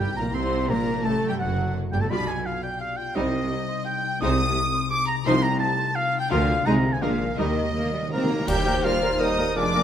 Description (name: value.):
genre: classical, dramatic, fast romantic movement for symphony orchestra.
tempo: 170 BPM.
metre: 3/4.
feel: straight.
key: C minor, Eb major from 4.2 s.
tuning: A4 = 440 Hz.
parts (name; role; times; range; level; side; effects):
warm symphonic violin section; melody; 0.0-9.8 s; F#4 to G6; -32 LUFS; left 3 dB; none.
warm oboe; second line; 0.0-9.8 s; Bb4 to Eb6; -28 LUFS; right 1 dB; none.
warm symphonic violin section; second line; 0.0-9.8 s; Bb4 to Eb6; -33 LUFS; left 2 dB; none.
rich symphonic viola section; accompaniment; 0.0-9.8 s; F3 to Bb4; -28 LUFS; right 2 dB; none.
concert harp; arpeggios; 0.0-9.8 s; F2 to Eb5; -31 LUFS; left 10 dB; none.
rich symphonic cello section; bass; 0.0-9.8 s; Eb2 to C4; -30 LUFS; right 2 dB; none.
rich symphonic double bass section; bass; 0.0-9.8 s; F1 to Eb2; -29 LUFS; right 2 dB; none.
cymbal swell, clash cymbals and concert bass drum; percussion; 6.3-9.2 s; none; -33 LUFS; equal; none.
timpani; percussion; 7.4-8.5 s; Eb3; -33 LUFS; right 1 dB; none.
warm trumpet; stabs; 8.1-9.8 s; Bb3 to G4; -30 LUFS; right 2 dB; none.
bright clarinet; second line; 8.5-9.8 s; Bb4; -34 LUFS; left 1 dB; none.
mellow small flute group; second line; 8.5-9.8 s; Ab5 to Bb5; -35 LUFS; right 1 dB; none.
mellow bassoon; accompaniment; 8.5-9.8 s; Bb2; -31 LUFS; right 2 dB; none.
mellow French horn section; sustained chords; 8.5-9.8 s; Bb4 to C5; -27 LUFS; left 4 dB; none.
room: light reverb.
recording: close, detailed microphones.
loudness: -21 LUFS.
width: side -9 dB against mid.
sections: 0.0-8.5 A section; 8.5-9.8 B section.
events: timpani fill 7.4-8.5; band accent 8.5-8.8.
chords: 0.0 Cm; 1.0 D7; 2.1 G7/B; 3.2 Cm; 4.2 Ab/C; 5.3 F7/C; 6.3 Bb/D; 6.7 Ab/C; 7.0 Bb7; 7.4 Eb.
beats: 0.34 0.69 | 1.05 1.40 1.75 | 2.11 2.46 2.81 | 3.16 3.51 3.86 | 4.22 4.57 4.92 | 5.27 5.61 5.96 | 6.32 6.67 7.02 | 7.39 7.75 8.12 | 8.48 8.84 9.20 | 9.56.